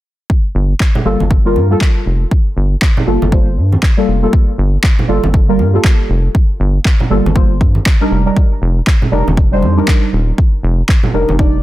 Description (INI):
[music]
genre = deep house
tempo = 119 BPM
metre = 4/4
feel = swing 60% on 16ths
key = G minor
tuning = A4 = 437 Hz
[part]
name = electronic kick drum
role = drums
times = 0.3-11.5 s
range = none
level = -11 LUFS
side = equal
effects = overdrive
[part]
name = rubbery square bass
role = bass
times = 0.6-11.6 s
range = Eb1 to G2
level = -14 LUFS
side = equal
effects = sidechain pumping
[part]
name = electronic handclaps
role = drums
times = 0.8-11.0 s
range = none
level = -20 LUFS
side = equal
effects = none
[part]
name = deep mellow chord stab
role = stabs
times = 1.0-11.6 s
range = G3 to D5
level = -16 LUFS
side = equal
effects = chorus, phaser, vintage 12-bit sampler grit, sidechain pumping, analog delay
[part]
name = congas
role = percussion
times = 1.0-11.4 s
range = none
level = -19 LUFS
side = right 2 dB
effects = none
[sound]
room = little or no reverb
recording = dense, heavily limited modern master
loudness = -10 LUFS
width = side -15 dB against mid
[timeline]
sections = 0.3-11.6 A section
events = none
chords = 0.3 Gm9; 8.1 F13sus4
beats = | 0.30 0.80 1.31 1.81 | 2.31 2.82 3.32 3.83 | 4.33 4.84 5.34 5.84 | 6.35 6.85 7.36 7.86 | 8.37 8.87 9.37 9.88 | 10.38 10.89 11.39